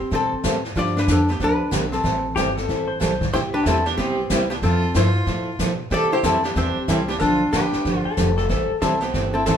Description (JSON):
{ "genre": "country, western swing", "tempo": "186 BPM", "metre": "4/4", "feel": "swing 62% on 8ths", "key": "C major", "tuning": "A4 = 441 Hz", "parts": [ { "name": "hollow-body jazz guitar", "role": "melody", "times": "0.0-9.6 s", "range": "G3 to D5", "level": "-22 LUFS", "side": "left 2 dB", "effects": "none" }, { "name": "upright bass", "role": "bass", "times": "0.0-9.6 s", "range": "F1 to C3", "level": "-26 LUFS", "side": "equal", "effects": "none" }, { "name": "picked steel-string acoustic guitar", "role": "accompaniment", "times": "0.1-9.6 s", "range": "C3 to A4", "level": "-26 LUFS", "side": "right 3 dB", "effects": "none" }, { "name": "jazz brush drum kit", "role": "drums", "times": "0.1-9.6 s", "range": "brushed snare drum, hi-hat, kick drum, snare drum", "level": "-27 LUFS", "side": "equal", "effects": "none" }, { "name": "pedal steel guitar", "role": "second line", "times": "2.4-3.3, 8.1-8.8 s", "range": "G4 to C5", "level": "-25 LUFS", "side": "left 6 dB", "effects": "none" }, { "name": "clear fiddle", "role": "second line", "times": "3.3-9.6 s", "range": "C4 to A4", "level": "-27 LUFS", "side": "right 2 dB", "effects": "none" } ], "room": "wet studio reverb, RT60 0.8 s", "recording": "band playing live in one room", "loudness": "-18 LUFS", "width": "side -8 dB against mid", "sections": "0.0-9.6 A section", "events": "none", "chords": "0.0 Am7; 0.8 G7; 2.1 Am7; 3.3 Cmaj7; 4.6 Fmaj7; 5.9 C69; 7.2 G7; 8.5 Am9" }